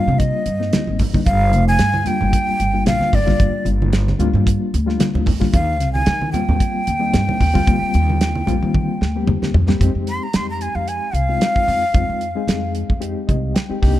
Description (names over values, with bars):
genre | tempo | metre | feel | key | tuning
electric jazz fusion | 112 BPM | 4/4 | swing 55% on 16ths | F dorian | A4 = 440 Hz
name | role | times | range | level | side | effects
breathy jazz flute | melody | 0.0-12.7 s | D5 to C6 | -21 LUFS | equal | none
reed electric piano | accompaniment | 0.0-14.0 s | G3 to G5 | -23 LUFS | left 4 dB | fast tremolo
upright bass | bass | 0.0-14.0 s | F1 to Eb3 | -19 LUFS | equal | none
congas | percussion | 0.1-9.8 s | none | -25 LUFS | right 2 dB | none
damped 70s drum kit | drums | 0.2-14.0 s | hi-hat, kick drum, snare drum, toms | -20 LUFS | equal | none
room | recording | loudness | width
light reverb | dark, warm production | -15 LUFS | side -14 dB against mid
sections
0.0-9.8 A section; 9.8-14.0 B section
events
drum fill 8.7-9.8; flute solo 9.8-14.0; reed electric piano fill 13.0-14.0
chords
0.0 Cm7; 1.3 Gm7; 5.5 Eb69; 9.8 Fm9